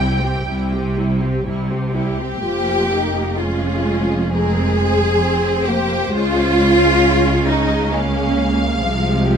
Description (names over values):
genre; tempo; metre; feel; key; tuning
classical, slow romantic movement for string orchestra; 57-69 BPM; 4/4; rubato; F minor; A4 = 440 Hz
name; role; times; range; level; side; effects
warm studio violin section; melody; 0.0-9.4 s; Ab4 to G5; -27 LUFS; equal; none
rich studio violin section; second line; 0.0-9.4 s; Db4 to Ab4; -18 LUFS; equal; none
warm studio viola section; accompaniment; 0.0-9.4 s; F3 to G4; -22 LUFS; equal; none
warm studio cello section; bass; 0.0-9.4 s; F2 to Db3; -24 LUFS; right 1 dB; none
warm studio double bass section; bass; 0.0-9.4 s; F1 to Db2; -22 LUFS; right 1 dB; none
room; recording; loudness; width
light reverb; close, detailed microphones; -15 LUFS; side -7 dB against mid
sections
0.0-2.4 A section; 2.4-9.4 B section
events
none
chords
0.0 C; 2.4 Fm; 6.1 Dbmaj7